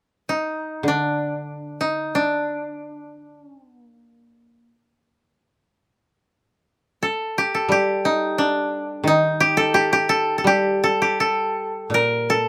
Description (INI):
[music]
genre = japanese traditional, Japanese chamber music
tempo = 66-91 BPM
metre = 2/4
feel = rubato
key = D miyako bushi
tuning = A4 = 441 Hz
[part]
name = koto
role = melody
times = 0.3-12.5 s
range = D4 to Bb4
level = -22 LUFS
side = equal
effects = none
[part]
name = koto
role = accompaniment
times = 0.8-3.4, 7.7-12.5 s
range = Bb2 to G3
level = -27 LUFS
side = equal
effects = none
[sound]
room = light reverb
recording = close, detailed microphones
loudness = -21 LUFS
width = mono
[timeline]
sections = 0.0-6.3 A section; 6.3-12.5 B section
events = none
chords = none